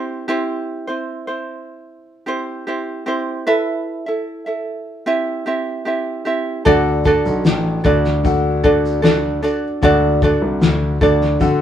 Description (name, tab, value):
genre	acoustic pop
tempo	75 BPM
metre	4/4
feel	straight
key	D mixolydian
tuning	A4 = 440 Hz
part	ukulele	accompaniment	0.0-11.6 s	C4 to E5	-18 LUFS	right 2 dB	none
part	warm upright piano	accompaniment	6.7-11.6 s	D4 to F#5	-22 LUFS	left 5 dB	none
part	dark grand piano	bass	6.7-11.6 s	A1 to D3	-20 LUFS	left 1 dB	none
part	cloth-damped thuddy drum kit	drums	6.7-11.6 s	kick drum, shaker, snare drum	-18 LUFS	left 2 dB	none
room	light reverb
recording	band playing live in one room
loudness	-16 LUFS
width	side -10 dB against mid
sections	0.0-6.7 A section; 6.7-11.6 B section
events	none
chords	0.0 C; 3.5 Asus2; 5.1 C; 6.7 D